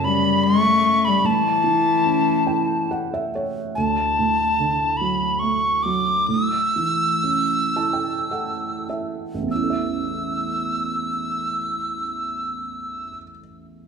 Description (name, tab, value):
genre	celtic folk, Celtic slow air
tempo	47-75 BPM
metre	3/4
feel	rubato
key	A mixolydian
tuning	A4 = 440 Hz
part	tin whistle	melody	0.0-13.2 s	A5 to E6	-21 LUFS	equal	none
part	clear cello	second line	0.0-2.9 s	E3 to A3	-21 LUFS	left 8 dB	none
part	felt-muted upright piano	accompaniment	0.0-13.9 s	A1 to A5	-25 LUFS	right 4 dB	none
room	wet recital hall reverb, RT60 1.5 s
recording	recorded in a church or concert hall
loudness	-19 LUFS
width	side -6 dB against mid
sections	0.0-3.8 A section; 3.8-9.5 B section; 9.5-13.2 C section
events	felt piano fill 2.1-3.8, 7.2-9.5; slowing down 3.8-9.5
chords	0.0 F#m; 1.2 A; 3.8 D; 6.3 A